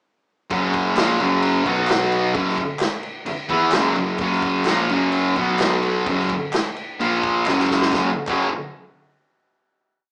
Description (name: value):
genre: garage rock duo or trio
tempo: 129 BPM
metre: 4/4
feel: straight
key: F# major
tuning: A4 = 440 Hz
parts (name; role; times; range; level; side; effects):
- thick fuzz guitar; riff; 0.5-8.5 s; F#2 to E4; -21 LUFS; equal; distortion
- fuzz picked electric bass; bass; 0.5-8.5 s; F#1 to E2; -32 LUFS; equal; overdrive, tube saturation
- vintage drum kit; drums; 0.5-8.4 s; crash cymbal, kick drum, snare drum; -28 LUFS; equal; none
- group handclap; percussion; 1.0-8.5 s; none; -33 LUFS; equal; none
room: moderate large studio reverb, RT60 0.8 s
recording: band playing live in one room, small speaker sound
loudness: -20 LUFS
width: mono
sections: 0.5-7.9 riff; 7.9-9.8 final chord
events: drum fill 7.5-7.9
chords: 0.5 F#; 1.7 B5; 2.4 F#; 5.4 B5; 6.1 F#5; 7.0 A#5; 7.5 F#5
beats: | 0.51 0.97 1.43 1.89 | 2.35 2.81 3.28 3.74 | 4.21 4.67 5.14 5.60 | 6.07 6.54 7.00 7.47 | 7.94 8.40